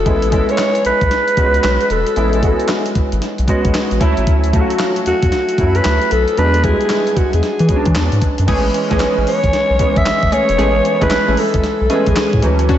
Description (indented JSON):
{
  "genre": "R&B, new jack swing",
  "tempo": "114 BPM",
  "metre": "4/4",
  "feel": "swing 64% on 16ths",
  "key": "A major",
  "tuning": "A4 = 440 Hz",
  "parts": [
    { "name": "breathy alto saxophone", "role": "melody", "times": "0.0-12.4 s", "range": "F#4 to E5", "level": "-16 LUFS", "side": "equal", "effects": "diffuse ambient delay" },
    { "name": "clear baby grand piano", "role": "accompaniment", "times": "0.0-12.8 s", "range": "E3 to F#4", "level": "-18 LUFS", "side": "right 1 dB", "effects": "ensemble chorus" },
    { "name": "round analog bass", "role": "bass", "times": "0.0-12.8 s", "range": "E1 to E3", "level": "-17 LUFS", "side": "equal", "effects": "none" },
    { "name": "clean 12-bit digital drum machine", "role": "drums", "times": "0.1-12.8 s", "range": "crash cymbal, handclaps, hi-hat, kick drum, snare drum", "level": "-19 LUFS", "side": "equal", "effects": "none" },
    { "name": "funky polysynth comp", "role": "stabs", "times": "8.5-12.8 s", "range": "A3 to G#4", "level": "-22 LUFS", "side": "equal", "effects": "chorus, diffuse ambient delay" },
    { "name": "warm analog pad", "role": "sustained chords", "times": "12.7-12.8 s", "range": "none", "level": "barely audible", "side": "none", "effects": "none" }
  ],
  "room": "moderate lush hall reverb, RT60 1.9 s, digital ambience",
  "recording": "dreamy mix soaked in reverb, nothing above 7.9 kHz",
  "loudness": "-12 LUFS",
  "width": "side -11 dB against mid",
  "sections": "0.0-8.5 A section; 8.5-12.8 B section",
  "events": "none",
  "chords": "0.1 Amaj7; 4.0 Dmaj7; 6.4 E7; 8.5 Amaj7"
}